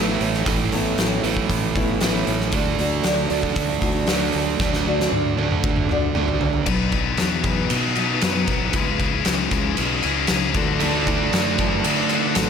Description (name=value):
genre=quiet-loud alternative rock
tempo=116 BPM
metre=4/4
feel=straight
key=unclear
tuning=A4 = 440 Hz
part: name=picked steel-string acoustic guitar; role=arpeggios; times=0.0-12.5 s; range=B2 to D5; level=-28 LUFS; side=left 3 dB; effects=analog delay
part: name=biting overdriven guitar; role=riff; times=0.0-6.7, 10.8-12.5 s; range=A2 to D4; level=-23 LUFS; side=right 9 dB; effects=slapback echo
part: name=fuzz fingered electric bass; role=bass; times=0.0-12.5 s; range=G#1 to D3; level=-27 LUFS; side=left 1 dB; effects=overdrive
part: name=oversized low-tuned drum kit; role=drums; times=0.2-12.5 s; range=crash cymbal, hi-hat, kick drum, ride cymbal, snare drum, toms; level=-23 LUFS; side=left 1 dB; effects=none
part: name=scooped high-gain guitar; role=riff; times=6.7-12.5 s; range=B2 to B4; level=-23 LUFS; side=left 11 dB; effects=distortion
room=moderate lush hall reverb, RT60 1.7 s, small room ambience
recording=big arena sound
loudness=-18 LUFS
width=side -7 dB against mid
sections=0.0-6.7 A section; 6.7-12.5 B section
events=drum fill 4.6-6.7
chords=0.0 Aadd9; 2.5 D; 6.7 B; 8.7 C#m; 10.6 Dadd9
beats=| 0.46 0.98 1.50 2.01 | 2.53 3.05 3.57 4.09 | 4.60 5.12 5.64 6.16 | 6.67 7.19 7.71 8.23 | 8.74 9.26 9.78 10.30 | 10.81 11.33 11.85 12.36